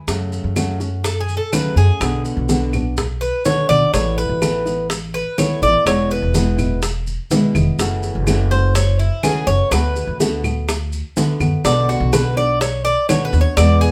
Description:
latin, Cuban son and guajira; 124 BPM; 4/4; straight; A4 = 440 Hz
flamenco guitar; accompaniment; 0.1-13.9 s; B2 to F#4; -25 LUFS; equal
upright bass; bass; 0.1-13.9 s; E1 to F#2; -21 LUFS; equal
bongos; percussion; 0.1-13.9 s; -26 LUFS; equal
congas; percussion; 0.1-13.9 s; -25 LUFS; equal
maracas; percussion; 0.1-13.9 s; -32 LUFS; equal
claves; percussion; 0.6-13.8 s; -33 LUFS; equal
Cuban tres; arpeggios; 1.0-13.9 s; E4 to D5; -21 LUFS; equal
moderate studio reverb, RT60 0.6 s; band playing live in one room; -18 LUFS; mono
0.1-13.9 A section
Cuban tres solo 0.1-13.9
0.1 F#m; 2.0 Bm; 3.9 Asus2; 5.9 E; 7.8 F#m7; 9.7 D6; 11.6 Bm
| 0.08 0.56 1.05 1.53 | 2.01 2.49 2.97 3.46 | 3.94 4.42 4.90 5.38 | 5.87 6.35 6.83 7.31 | 7.79 8.28 8.76 9.24 | 9.72 10.20 10.69 11.17 | 11.65 12.13 12.61 13.09 | 13.57

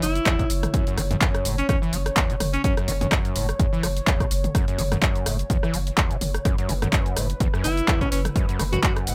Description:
acid house; 126 BPM; 4/4; swing 55% on 16ths; F# minor; A4 = 441 Hz
bright alto saxophone; melody; 0.0-2.7, 7.6-8.9 s; C#4 to F#4; -30 LUFS; equal; tape echo
warbly tape-like pad; sustained chords; 0.0-9.1 s; B4 to C#5; -36 LUFS; equal; chorus, built-in reverb, sidechain pumping
overdriven acid bass; riff; 0.0-9.1 s; E2 to F#3; -31 LUFS; equal; distortion, analog chorus, digital delay
saturated sub bass; bass; 0.0-9.1 s; F#1; -29 LUFS; equal; sidechain pumping
punchy analog drum machine; drums; 0.0-9.1 s; handclaps, hi-hat, rim click, shaker, toms; -29 LUFS; equal
electronic kick drum; drums; 0.3-8.9 s; -26 LUFS; equal
light reverb; -23 LUFS; mono
0.0-9.1 A section
0.0 F#7(no3)
0.26 | 0.74 1.21 1.69 2.17 | 2.64 3.12 3.60 4.07 | 4.55 5.02 5.50 5.98 | 6.45 6.93 7.40 7.88 | 8.36 8.83

